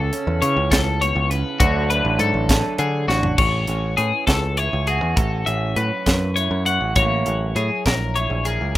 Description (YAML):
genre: math rock and midwest emo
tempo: 67 BPM (dotted quarters)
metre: 6/8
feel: straight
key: A major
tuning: A4 = 440 Hz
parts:
  - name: electric guitar through a small old amp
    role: accompaniment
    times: 0.0-8.8 s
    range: A2 to A#4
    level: -27 LUFS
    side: right 6 dB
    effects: spring reverb
  - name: twelve-string electric guitar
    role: arpeggios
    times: 0.0-8.8 s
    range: F#4 to F#5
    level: -22 LUFS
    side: left 4 dB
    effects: wide subtle chorus, tape echo
  - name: picked electric bass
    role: bass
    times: 0.0-8.8 s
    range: A1 to D3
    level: -22 LUFS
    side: equal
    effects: none
  - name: crisp fusion drum kit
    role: drums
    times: 0.1-8.8 s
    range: crash cymbal, hi-hat, kick drum, snare drum, toms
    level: -21 LUFS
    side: equal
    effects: none
room: little or no reverb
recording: rough home demo mix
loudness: -17 LUFS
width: side -15 dB against mid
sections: 0.0-3.4 A section; 3.4-8.8 B section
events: drum fill 3.1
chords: 0.0 Aadd9/C#; 1.6 Bm7; 3.4 A6; 5.2 A69; 7.0 F#7/A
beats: 0.71 | 1.60 2.49 | 3.38 4.27 | 5.17 6.06 | 6.96 7.85 | 8.75